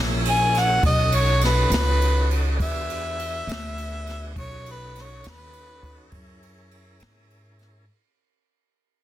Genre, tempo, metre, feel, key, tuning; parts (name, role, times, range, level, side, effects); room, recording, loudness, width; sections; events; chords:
slow blues; 68 BPM (dotted quarters); 12/8; straight; B mixolydian; A4 = 441 Hz
tonewheel organ; sustained chords; 0.0-7.9 s; A#3 to A#4; -33 LUFS; equal; slow rotary speaker, plate reverb
upright bass; bass; 0.0-7.9 s; A#1 to G#2; -24 LUFS; equal
warm harmonica; melody; 0.3-6.1 s; B4 to G#5; -25 LUFS; equal; overdrive, plate reverb
jazz brush drum kit; drums; 0.3-7.7 s; kick drum, ride cymbal, snare drum; -26 LUFS; right 1 dB; soft clipping on snare
light reverb; dense, heavily limited modern master; -19 LUFS; side -13 dB against mid
0.0-7.9 A section
fade-out 0.0-7.9; harmonica solo 0.0-7.9
0.0 F#7; 0.8 B7; 2.6 E7; 4.4 B7; 6.1 F#7